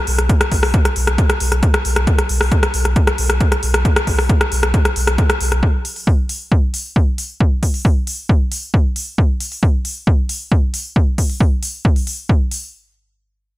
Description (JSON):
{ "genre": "driving peak-time techno", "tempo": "135 BPM", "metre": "4/4", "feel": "straight", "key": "unclear", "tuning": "A4 = 440 Hz", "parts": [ { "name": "saturated sub bass", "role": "bass", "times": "0.1-5.6 s", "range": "B1", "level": "-20 LUFS", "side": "equal", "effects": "overdrive, sidechain pumping, low-pass filter" }, { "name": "techno drum kit", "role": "drums", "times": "0.1-12.6 s", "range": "hi-hat, rim click", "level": "-20 LUFS", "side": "left 1 dB", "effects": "gated reverb" }, { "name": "electronic kick drum", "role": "drums", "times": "0.3-12.4 s", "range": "none", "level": "-14 LUFS", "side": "equal", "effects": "none" } ], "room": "little or no reverb", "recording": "bright 1980s-style digital production", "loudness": "-14 LUFS", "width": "side -17 dB against mid", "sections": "0.0-12.7 A section", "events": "none", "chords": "none" }